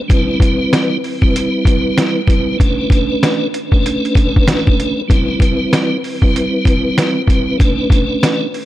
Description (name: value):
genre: hip hop, boom-bap hip-hop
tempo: 96 BPM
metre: 4/4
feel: swing 62% on 16ths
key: unclear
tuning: A4 = 440 Hz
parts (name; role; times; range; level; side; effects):
- tonewheel organ; accompaniment; 0.1-8.5 s; G3 to B4; -16 LUFS; equal; chorus vibrato, fast rotary speaker, cassette tape, high-pass filter, low-pass filter, tape echo
- trip hop sampler-style drum kit; drums; 0.1-8.7 s; hi-hat, kick drum, snare drum; -14 LUFS; equal; none
room: light reverb, digital ambience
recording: echo-heavy mix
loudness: -12 LUFS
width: side -14 dB against mid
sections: 0.0-8.7 A section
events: none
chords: 0.1 Cmaj7; 2.6 Bm9; 5.1 Cmaj7; 7.6 Bm9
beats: | 0.10 0.72 1.35 1.97 | 2.60 3.22 3.85 4.47 | 5.10 5.72 6.35 6.97 | 7.60 8.22